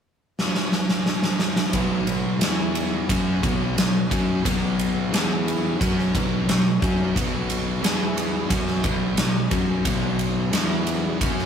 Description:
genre	hard rock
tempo	89 BPM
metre	4/4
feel	straight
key	unclear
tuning	A4 = 440 Hz
part	huge arena drum kit	drums	0.4-11.5 s	kick drum, ride cymbal, snare drum	-23 LUFS	equal	none
part	overdriven semi-hollow guitar	riff	1.7-11.5 s	B2 to F#4	-27 LUFS	left 7 dB	none
part	sludgy distorted guitar	riff	1.7-11.5 s	B2 to F#4	-28 LUFS	right 6 dB	overdrive
part	fuzz fingered electric bass	bass	1.7-11.5 s	B1 to F#2	-27 LUFS	equal	overdrive
room	light reverb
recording	rough rehearsal-room recording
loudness	-20 LUFS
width	side -7 dB against mid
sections	0.0-1.7 A section; 1.7-11.5 B section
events	drum fill 0.4-1.7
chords	0.0 N.C.; 1.7 B5; 2.4 E5; 3.1 B5; 5.1 E5; 5.8 B5; 7.8 E5; 8.5 B5; 10.5 E5

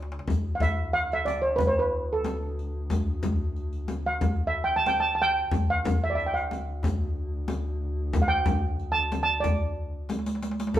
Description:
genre	Arabic maqam ensemble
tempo	92 BPM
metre	4/4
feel	straight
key	D maqam rast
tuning	A4 = 439 Hz
part	warm double bass	drone	0.0-10.8 s	D2	-33 LUFS	left 1 dB	none
part	darbuka	percussion	0.0-10.8 s	none	-31 LUFS	left 1 dB	none
part	frame drum	percussion	0.3-10.8 s	none	-31 LUFS	left 2 dB	none
part	riq	percussion	0.3-10.8 s	none	-35 LUFS	right 2 dB	none
part	steel pan	melody	0.6-10.8 s	A4 to A5	-25 LUFS	right 2 dB	none
part	dark violin	second line	10.7-10.8 s	A4	-46 LUFS	left 4 dB	none
room	moderate large studio reverb, RT60 1.0 s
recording	band playing live in one room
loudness	-24 LUFS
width	side -12 dB against mid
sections	0.3-10.7 A section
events	drum fill 0.0, 10.1-10.7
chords	none

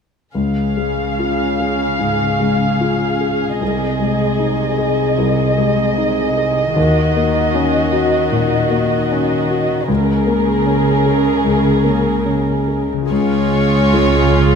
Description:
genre	cinematic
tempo	75 BPM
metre	4/4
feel	uneven beats, rubato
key	Db major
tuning	A4 = 440 Hz
part	warm grand piano	accompaniment	0.3-14.6 s	C2 to Ab4	-18 LUFS	left 3 dB	none
part	dark studio violin section	second line	0.4-14.6 s	Gb4 to F5	-19 LUFS	left 1 dB	none
part	dark studio cello section	bass	0.4-14.6 s	C3 to Eb3	-20 LUFS	right 5 dB	none
part	concert harp	arpeggios	12.9-14.6 s	Db3 to Ab4	-22 LUFS	left 9 dB	none
part	warm chamber violin section	melody	13.1-14.6 s	Db5	-19 LUFS	left 4 dB	none
part	warm studio viola section	accompaniment	13.1-14.6 s	Ab3 to F4	-18 LUFS	right 2 dB	none
part	warm studio double bass section	bass	13.1-14.6 s	Db2	-18 LUFS	right 5 dB	none
room	moderate scoring stage reverb, RT60 1.8 s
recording	none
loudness	-14 LUFS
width	side -6 dB against mid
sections	0.3-13.1 A section; 13.1-14.6 B section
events	none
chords	0.3 Db; 3.6 Ab/C; 6.8 Ebm7; 9.9 Bbm7/Db; 13.1 Db

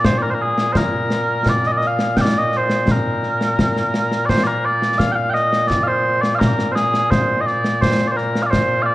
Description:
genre	scottish traditional, Scottish pipe music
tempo	85 BPM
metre	2/4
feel	straight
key	Bb mixolydian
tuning	A4 = 440 Hz
part	mellow small bagpipes	melody	0.0-8.9 s	Bb2 to G5	-17 LUFS	equal	none
part	concert snare drum and concert bass drum	drums	0.0-8.7 s	none	-20 LUFS	equal	none
room	moderate scoring stage reverb, RT60 2.1 s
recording	worn, warbling old tape, cassette tape, warbly pitch drift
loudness	-15 LUFS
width	side -16 dB against mid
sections	0.0-4.3 A section; 4.3-8.9 B section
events	none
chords	none

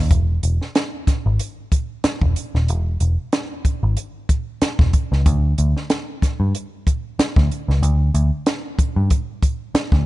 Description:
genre	funk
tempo	93 BPM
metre	4/4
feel	swing 56% on 16ths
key	unclear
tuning	A4 = 440 Hz
part	vintage muted picked electric bass	bass	0.0-10.0 s	D#1 to G2	-18 LUFS	equal	none
part	compact cocktail drum kit	drums	0.1-10.1 s	hi-hat, kick drum, snare drum	-19 LUFS	equal	none
room	little or no reverb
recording	nothing above 10.8 kHz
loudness	-17 LUFS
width	side -17 dB against mid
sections	0.1-10.1 A section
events	none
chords	none

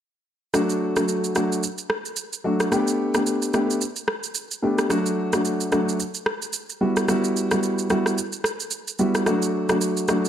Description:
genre	afrobeats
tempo	110 BPM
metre	4/4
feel	swing 58% on 16ths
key	D major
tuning	A4 = 440 Hz
part	dark baby grand piano	accompaniment	0.5-10.3 s	F#3 to G4	-21 LUFS	equal	none
part	electronic rim click and shaker	drums	0.5-10.3 s	none	-26 LUFS	right 1 dB	overdrive
room	moderate lush hall reverb, RT60 1.6 s, small room ambience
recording	none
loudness	-21 LUFS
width	side -10 dB against mid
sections	0.5-9.3 A section; 9.3-10.3 B section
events	none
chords	0.5 D; 2.7 Gadd9; 4.9 D; 6.8 Emadd9; 9.3 D

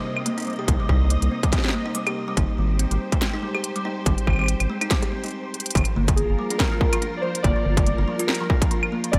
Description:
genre	IDM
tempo	142 BPM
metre	4/4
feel	swing 56% on 16ths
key	G phrygian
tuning	A4 = 440 Hz
part	soft string machine	sustained chords	0.0-9.2 s	C3 to Eb5	-35 LUFS	equal	ensemble chorus
part	buzzing kalimba	arpeggios	0.0-9.1 s	F3 to G4	-31 LUFS	equal	digital delay
part	flickering grainy texture	texture	0.0-5.3 s	C4 to C5	-44 LUFS	equal	none
part	industrial drum kit	drums	0.2-9.2 s	claves, hi-hat, snare drum	-29 LUFS	equal	none
part	round analog bass	bass	0.7-9.2 s	Eb1 to C2	-24 LUFS	equal	none
part	electronic kick drum	drums	0.7-9.2 s	none	-25 LUFS	equal	distortion
part	warbly lo-fi synth keys	melody	6.2-9.2 s	Ab4 to D5	-30 LUFS	equal	chorus, dub echo
room	little or no reverb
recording	none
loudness	-23 LUFS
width	mono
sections	0.0-5.8 A section; 5.8-9.2 B section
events	break 5.3-5.8; drum fill 5.5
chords	0.0 Cm7; 2.4 Abmaj7; 5.8 Gm7

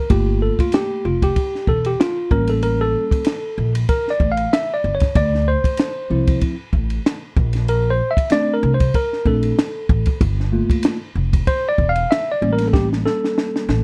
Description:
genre	hip hop, jazz-hop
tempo	95 BPM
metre	4/4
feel	swing 57% on 16ths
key	unclear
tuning	A4 = 440 Hz
part	mellow tine electric piano	accompaniment	0.0-13.8 s	F3 to F5	-22 LUFS	equal	none
part	upright bass	bass	0.1-13.8 s	E1 to D2	-22 LUFS	equal	none
part	compact cocktail drum kit	drums	0.1-13.8 s	hi-hat, kick drum, ride cymbal, snare drum	-21 LUFS	equal	none
room	little or no reverb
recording	dark, warm production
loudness	-19 LUFS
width	mono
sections	0.0-13.8 A section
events	tine electric piano solo 0.0-13.8; drum fill 12.7-13.8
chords	0.1 Gm9; 2.3 A7b9; 5.2 Dm9; 7.4 Bbmaj9; 10.2 Gm9; 12.4 A7b9

